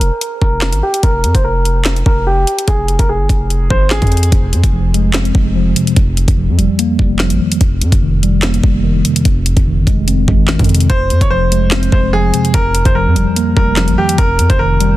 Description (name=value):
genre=hip hop, drill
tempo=146 BPM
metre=4/4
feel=half-time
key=F minor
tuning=A4 = 441 Hz
part: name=bright grand piano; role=melody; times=0.0-4.3, 10.9-15.0 s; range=G4 to Db5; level=-18 LUFS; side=equal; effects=low-pass filter, digital delay
part: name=hard-hitting 808-style bass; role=bass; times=0.0-15.0 s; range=F1 to F2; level=-14 LUFS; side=equal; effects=none
part: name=drill drum kit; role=drums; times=0.0-14.9 s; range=handclaps, hi-hat, kick drum, snare drum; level=-15 LUFS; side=equal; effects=overdrive
part: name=mellow tine electric piano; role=accompaniment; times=4.3-15.0 s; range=F2 to C4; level=-15 LUFS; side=equal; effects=medium stereo tremolo, low-pass filter
room=digital ambience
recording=dense, heavily limited modern master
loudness=-10 LUFS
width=side -15 dB against mid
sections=0.0-15.0 A section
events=filter sweep 0.0-4.3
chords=0.0 Fsus4; 1.0 Fsus24; 2.7 Fm; 6.0 Ebadd9/F; 7.6 Cm7/F; 9.3 Ab/F; 10.9 Fm; 12.5 Ebadd9/F; 14.2 Cm7/F (rootless)